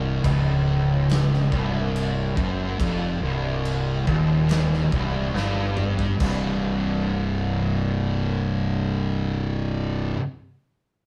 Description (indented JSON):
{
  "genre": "stoner and doom metal",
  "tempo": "70 BPM",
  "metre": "4/4",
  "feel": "straight",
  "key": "C minor",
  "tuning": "A4 = 440 Hz",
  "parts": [
    { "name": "thick fuzz guitar", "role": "riff", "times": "0.0-10.2 s", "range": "C2 to C3", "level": "-27 LUFS", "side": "equal", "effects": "distortion" },
    { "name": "thick fuzz guitar", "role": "riff", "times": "0.0-10.2 s", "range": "C2 to C3", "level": "-28 LUFS", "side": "equal", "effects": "distortion" },
    { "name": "fuzz fingered electric bass", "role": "bass", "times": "0.0-10.1 s", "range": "C1 to G1", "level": "-32 LUFS", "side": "equal", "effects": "overdrive" },
    { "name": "big rock drum kit", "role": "drums", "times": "0.2-6.4 s", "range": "crash cymbal, kick drum, snare drum, splash cymbal, toms", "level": "-32 LUFS", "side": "equal", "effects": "none" }
  ],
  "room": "moderate studio reverb, RT60 0.6 s",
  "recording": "band playing live in one room",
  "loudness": "-24 LUFS",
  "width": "mono",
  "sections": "0.0-6.2 A section; 6.2-9.6 B section",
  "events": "drum fill 5.3-6.2",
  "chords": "0.0 Cm; 6.2 C5"
}